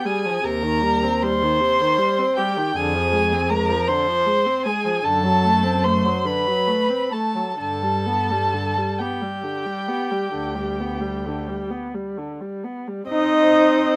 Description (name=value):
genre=classical, slow romantic movement for string quartet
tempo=42-54 BPM (dotted quarters)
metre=12/8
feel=rubato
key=C minor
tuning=A4 = 440 Hz
part: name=muted violin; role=melody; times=0.0-14.0 s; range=C5 to C6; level=-27 LUFS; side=equal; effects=none
part: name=muted violin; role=second line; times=0.0-14.0 s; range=G4 to Eb5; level=-26 LUFS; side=equal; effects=none
part: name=muted viola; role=accompaniment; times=0.0-14.0 s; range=C3 to C4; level=-28 LUFS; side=equal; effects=none
part: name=muted cello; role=bass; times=0.4-14.0 s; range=D2 to Eb4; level=-26 LUFS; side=equal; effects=none
room=light reverb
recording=close, detailed microphones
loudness=-21 LUFS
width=mono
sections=0.0-13.1 A section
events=none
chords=0.4 Cm/Eb; 2.8 Dm7b5/F; 5.1 D7/F#; 7.6 G; 13.1 Cm